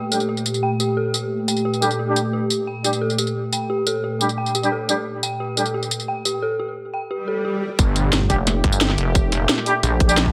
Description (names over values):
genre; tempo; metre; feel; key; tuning
dark technical drum and bass; 176 BPM; 4/4; straight; G minor; A4 = 441 Hz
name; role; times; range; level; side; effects
sweeping resonant pad; sustained chords; 0.0-10.3 s; Bb2 to G4; -28 LUFS; equal; chorus, sidechain pumping
dark detuned synth bell; arpeggios; 0.0-7.6 s; G4 to G5; -28 LUFS; equal; chorus, phaser, sidechain pumping, tape echo
dark brass ensemble; stabs; 0.1-5.6, 8.3-10.1 s; G3 to G4; -26 LUFS; equal; low-pass filter, tape echo
drum and bass drum kit; drums; 0.1-10.2 s; hi-hat, snare drum, tambourine; -24 LUFS; equal; none
swell; sound effects; 7.2-7.8 s; none; -30 LUFS; equal; none
detuned saw bass; bass; 7.8-8.3 s; G1; -22 LUFS; equal; chorus, overdrive, sidechain pumping
electronic kick drum; drums; 7.8-10.3 s; none; -20 LUFS; equal; none
pulsing pluck wobble bass; bass; 8.3-10.3 s; F1 to Bb1; -23 LUFS; equal; chorus
room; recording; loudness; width
light reverb; none; -21 LUFS; mono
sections
0.0-7.8 A section; 7.8-10.3 B section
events
swell 7.2-7.8; drop 7.8-10.3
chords
0.0 Gmadd9